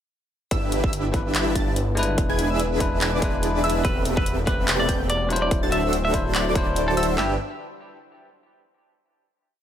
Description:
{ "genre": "future bass", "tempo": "144 BPM", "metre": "4/4", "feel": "swing 56% on 16ths, half-time", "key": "G major", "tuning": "A4 = 441 Hz", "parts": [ { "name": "wide unison pluck", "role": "arpeggios", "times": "0.5-7.3 s", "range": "D6 to A6", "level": "-32 LUFS", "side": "right 2 dB", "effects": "vintage 12-bit sampler grit, sidechain pumping" }, { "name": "dense compressed supersaw", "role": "riff", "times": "0.5-7.3 s", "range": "C4 to A5", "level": "-26 LUFS", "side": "equal", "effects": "sidechain pumping" }, { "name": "wide detuned saw bass", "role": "bass", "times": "0.5-7.4 s", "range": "D1 to G1", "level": "-26 LUFS", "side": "equal", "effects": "chorus, sidechain pumping" }, { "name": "big-room dance drum kit", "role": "drums", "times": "0.5-7.3 s", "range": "handclaps, kick drum, snare drum", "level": "-25 LUFS", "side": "equal", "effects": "none" }, { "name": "big-room dance drum kit", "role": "drums", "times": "0.5-7.1 s", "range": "handclaps, hi-hat", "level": "-28 LUFS", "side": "equal", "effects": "none" }, { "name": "bell-like tine electric piano", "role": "accompaniment", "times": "1.1-7.4 s", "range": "F#3 to C5", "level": "-28 LUFS", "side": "left 3 dB", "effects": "sidechain pumping, tape echo" }, { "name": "clean electric guitar", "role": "melody", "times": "3.8-7.3 s", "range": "G4 to E5", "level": "-28 LUFS", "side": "equal", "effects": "sidechain pumping, tape echo" } ], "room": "light reverb", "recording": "none", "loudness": "-20 LUFS", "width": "side -10 dB against mid", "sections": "0.5-7.2 drop; 7.2-8.8 final chord", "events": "drop 0.5-7.2", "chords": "0.5 G6; 2.2 E7; 3.8 Am9/E; 5.5 D9; 7.2 G6", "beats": "| 0.51 0.93 1.35 1.76 | 2.18 2.60 3.01 3.43 | 3.85 4.26 4.68 5.10 | 5.51 5.93 6.35 6.76 | 7.18" }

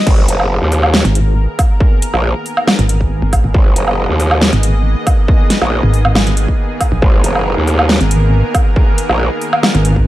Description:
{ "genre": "heavy wobble dubstep", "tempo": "138 BPM", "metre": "4/4", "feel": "half-time", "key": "G# minor", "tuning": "A4 = 440 Hz", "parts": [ { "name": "lush unison pad", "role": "sustained chords", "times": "0.1-10.1 s", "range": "D#3 to D#5", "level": "-21 LUFS", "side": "equal", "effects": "chorus, sidechain pumping" }, { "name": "growl bass", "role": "bass", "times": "0.1-9.3 s", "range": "F#1 to D#2", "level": "-13 LUFS", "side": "equal", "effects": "chorus, overdrive" }, { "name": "dubstep drum kit", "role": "drums", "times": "0.1-9.9 s", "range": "crash cymbal, hi-hat, snare drum, woodblock", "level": "-15 LUFS", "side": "equal", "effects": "studio reverb" }, { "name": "electronic kick drum", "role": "drums", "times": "0.1-10.0 s", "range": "none", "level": "-12 LUFS", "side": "equal", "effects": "distortion, studio reverb" }, { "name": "pulsing pluck wobble bass", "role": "bass", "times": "1.0-10.1 s", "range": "G#1 to A#1", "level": "-12 LUFS", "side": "equal", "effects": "chorus, overdrive" } ], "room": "digital ambience", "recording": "dark, warm production", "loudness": "-10 LUFS", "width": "side -15 dB against mid", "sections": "0.1-10.1 A section", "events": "drop 0.1-10.1", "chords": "0.1 G#madd9", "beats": "| 0.07 0.50 0.94 1.37 | 1.80 2.24 2.67 3.11 | 3.54 3.98 4.41 4.85 | 5.28 5.72 6.15 6.59 | 7.02 7.46 7.89 8.33 | 8.76 9.20 9.63 10.07" }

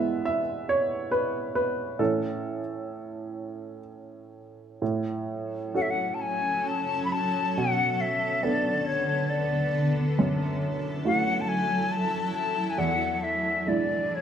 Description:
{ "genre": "celtic folk, Celtic slow air", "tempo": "59-70 BPM", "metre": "3/4", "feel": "rubato", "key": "A major", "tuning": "A4 = 440 Hz", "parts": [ { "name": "warm upright piano", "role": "accompaniment", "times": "0.0-14.2 s", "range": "E2 to E5", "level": "-28 LUFS", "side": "right 3 dB", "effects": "none" }, { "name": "granular cloud pad", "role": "sustained chords", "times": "6.0-14.2 s", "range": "D3 to A4", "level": "-29 LUFS", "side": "equal", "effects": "built-in reverb" }, { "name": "bright wooden flute", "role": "melody", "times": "5.8-14.2 s", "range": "C#5 to B5", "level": "-26 LUFS", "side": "left 4 dB", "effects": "none" } ], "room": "moderate recital hall reverb, RT60 1.4 s", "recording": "none", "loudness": "-24 LUFS", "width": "side -8 dB against mid", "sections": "0.0-4.8 A section; 4.8-14.2 B section", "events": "upright piano solo 0.0-4.8", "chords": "0.0 E; 2.0 A; 4.8 A6; 7.6 Bm7; 10.2 F#m7; 12.8 E7", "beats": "0.25 1.12 | 1.99 2.88 3.84 | 4.81 5.75 6.67 | 7.57 8.44 9.30 | 10.18 11.05 11.91 | 12.78 13.66" }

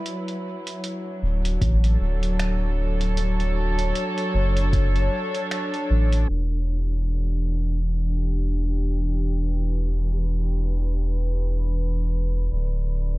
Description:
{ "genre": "ambient dub", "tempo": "77 BPM", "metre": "4/4", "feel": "swing 57% on 16ths", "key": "E dorian", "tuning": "A4 = 440 Hz", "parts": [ { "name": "dark studio string section", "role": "sustained chords", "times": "0.0-13.2 s", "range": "D3 to C#5", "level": "-28 LUFS", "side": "equal", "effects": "vintage 12-bit sampler grit, low-pass filter" }, { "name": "lo-fi sampler-style drum kit", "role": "drums", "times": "0.1-13.2 s", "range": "finger snaps, hi-hat", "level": "-34 LUFS", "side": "right 1 dB", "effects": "low-pass filter on hats, small room ambience, low-pass filter on snare" }, { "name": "soft dub sub bass", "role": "bass", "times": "1.2-13.2 s", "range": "D1 to A1", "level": "-22 LUFS", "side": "equal", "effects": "none" }, { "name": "electronic kick drum", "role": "drums", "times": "1.6-4.9 s", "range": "none", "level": "-24 LUFS", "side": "equal", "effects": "none" } ], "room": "digital ambience", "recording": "dark, warm production, low-pass filter", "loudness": "-21 LUFS", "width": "side -20 dB against mid", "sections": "0.0-6.3 A section; 6.3-13.2 B section", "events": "filter sweep on string section 6.3-13.2; filter sweep 6.3-13.2", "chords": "0.1 Dmaj7; 6.3 Em7; 12.5 N.C.", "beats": "| 0.06 0.84 1.61 2.39 | 3.17 3.95 4.73 5.51 | 6.29 7.07 7.85 8.63 | 9.41 10.19 10.97 11.74 | 12.52" }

